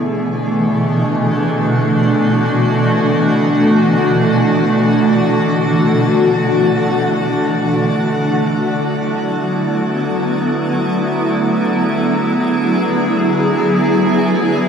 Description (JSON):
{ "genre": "ambient", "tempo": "free time", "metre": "none", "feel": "none", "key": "unclear", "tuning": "A4 = 439 Hz", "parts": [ { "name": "granular cloud pad", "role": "sustained chords", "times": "0.0-14.7 s", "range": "B2 to G#4", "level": "-14 LUFS", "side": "equal", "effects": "built-in reverb" }, { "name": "organ-like drone", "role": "drone", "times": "0.0-14.7 s", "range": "D3 to A3", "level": "-19 LUFS", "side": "right 1 dB", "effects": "ensemble chorus, built-in reverb" } ], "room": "wet shimmer reverb, RT60 7.8 s", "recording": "none", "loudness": "-13 LUFS", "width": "side -7 dB against mid", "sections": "0.0-14.7 A section", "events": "none", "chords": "0.0 Bm; 7.1 F#m7" }